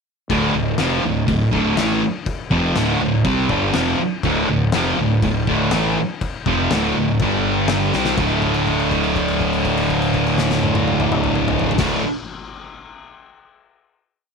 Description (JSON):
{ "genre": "garage rock duo or trio", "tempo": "122 BPM", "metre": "4/4", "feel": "straight", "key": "D minor", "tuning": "A4 = 436 Hz", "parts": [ { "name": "thick fuzz guitar", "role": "riff", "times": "0.3-12.0 s", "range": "D2 to C4", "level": "-17 LUFS", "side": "right 1 dB", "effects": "distortion" }, { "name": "fuzz fingered electric bass", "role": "bass", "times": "0.3-12.0 s", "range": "D1 to C2", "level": "-25 LUFS", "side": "equal", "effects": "overdrive" }, { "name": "oversized low-tuned drum kit", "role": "drums", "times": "0.3-11.9 s", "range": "crash cymbal, kick drum, snare drum, toms", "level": "-25 LUFS", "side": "left 4 dB", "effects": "none" } ], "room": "little or no reverb", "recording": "1960s-style stereo", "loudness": "-16 LUFS", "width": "side -5 dB against mid", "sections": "0.3-8.2 riff; 8.2-12.1 final chord", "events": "drum fill 7.9; held note 8.2-11.8", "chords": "0.3 Dm; 7.2 G5; 7.9 C5; 8.2 D5" }